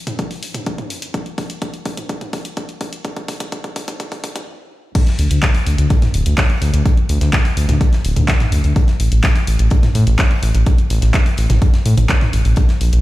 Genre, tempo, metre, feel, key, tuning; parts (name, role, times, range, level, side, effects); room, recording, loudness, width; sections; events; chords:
melodic techno; 126 BPM; 4/4; straight; A4 = 439 Hz
house drum kit; drums; 0.1-13.0 s; crash cymbal, handclaps, hi-hat, toms; -23 LUFS; equal; studio reverb
electronic kick drum; drums; 0.2-12.7 s; -16 LUFS; equal; studio reverb
modern studio drum kit; drums; 5.0-12.9 s; hi-hat, snare drum; -35 LUFS; left 1 dB
round analog bass; bass; 5.2-13.0 s; D1 to A2; -13 LUFS; equal; sidechain pumping
digital ambience; played on a big sound system in a bare room, large studio reverb, high-pass filter; -13 LUFS; side -17 dB against mid
0.0-5.0 A section; 5.0-13.0 B section
build-up 0.0-5.0; drum fill 0.0-4.5; stop 4.5-5.0; drop 5.0-13.0